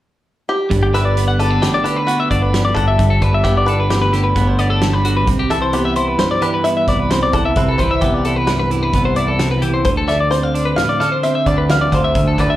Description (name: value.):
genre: math rock and midwest emo.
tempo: 131 BPM.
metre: 5/4.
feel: straight.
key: G major.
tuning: A4 = 440 Hz.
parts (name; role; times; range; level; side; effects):
bluegrass banjo; melody; 0.5-12.6 s; F#4 to F5; -21 LUFS; left 1 dB; slapback echo.
twelve-string electric guitar; accompaniment; 0.7-12.6 s; D2 to E4; -20 LUFS; right 3 dB; slapback echo.
growling picked electric bass; bass; 0.7-12.6 s; G1 to D2; -18 LUFS; equal; overdrive.
loose indie drum kit; drums; 0.7-12.5 s; hi-hat, kick drum, snare drum; -22 LUFS; equal; none.
twelve-string electric guitar; arpeggios; 0.8-12.6 s; F#4 to F#5; -19 LUFS; left 2 dB; slapback echo.
room: light reverb.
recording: live gig heard through the venue's PA, club reverb.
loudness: -13 LUFS.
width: side -14 dB against mid.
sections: 0.7-12.6 A section.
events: none.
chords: 0.0 N.C.; 0.7 G; 5.3 Cmaj7; 9.9 Dm7.